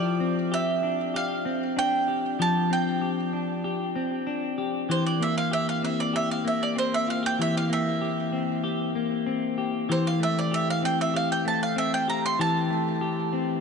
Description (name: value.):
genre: dream pop.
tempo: 96 BPM.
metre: 4/4.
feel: straight.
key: unclear.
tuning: A4 = 439 Hz.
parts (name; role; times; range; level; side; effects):
bowl-back mandolin; melody; 0.0-13.3 s; C5 to C6; -28 LUFS; right 4 dB; tape echo.
clean electric guitar; arpeggios; 0.0-13.6 s; E3 to G4; -26 LUFS; left 3 dB; wide subtle chorus, tape echo.
room: wet huge ambient reverb, RT60 6.3 s.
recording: dark, warm production, nothing above 10.6 kHz.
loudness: -24 LUFS.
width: side -5 dB against mid.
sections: 0.0-13.6 A section.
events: none.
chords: 0.0 Fsus2; 4.9 C7; 9.9 Fmaj9/E (rootless).